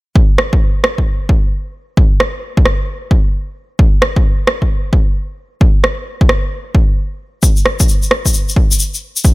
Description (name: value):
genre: UK garage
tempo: 132 BPM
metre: 4/4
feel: swing 64% on 16ths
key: none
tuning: none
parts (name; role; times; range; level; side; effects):
- electronic kick drum; drums; 0.2-9.3 s; none; -11 LUFS; equal; small room reverb
- electronic rim click; drums; 0.4-8.2 s; none; -16 LUFS; equal; overdrive, small room reverb
- tube shaker; percussion; 7.4-9.3 s; none; -17 LUFS; left 4 dB; none
room: studio reverb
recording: none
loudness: -12 LUFS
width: side -21 dB against mid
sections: 0.2-9.3 A section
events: none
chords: none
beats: | 0.15 0.61 1.06 1.52 | 1.97 2.43 2.88 3.34 | 3.79 4.25 4.70 5.16 | 5.61 6.06 6.52 6.97 | 7.43 7.88 8.34 8.79 | 9.25